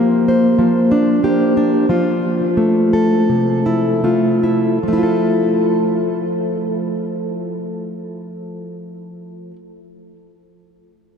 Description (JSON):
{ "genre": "folk, solo fingerstyle acoustic guitar", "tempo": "74-98 BPM", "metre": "4/4", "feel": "straight", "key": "F major", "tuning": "A4 = 440 Hz", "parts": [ { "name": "fingerpicked plugged-in steel-string acoustic guitar", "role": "solo", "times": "0.0-9.6 s", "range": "C3 to C5", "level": "-15 LUFS", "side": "equal", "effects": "tape echo" } ], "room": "wet huge ambient reverb, RT60 5.3 s", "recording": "dreamy mix soaked in reverb", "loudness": "-14 LUFS", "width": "side -7 dB against mid", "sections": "0.0-4.8 A section; 4.8-8.0 B section", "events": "slowing down 0.0-4.8", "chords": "0.0 Gm/F; 1.9 Fmaj7" }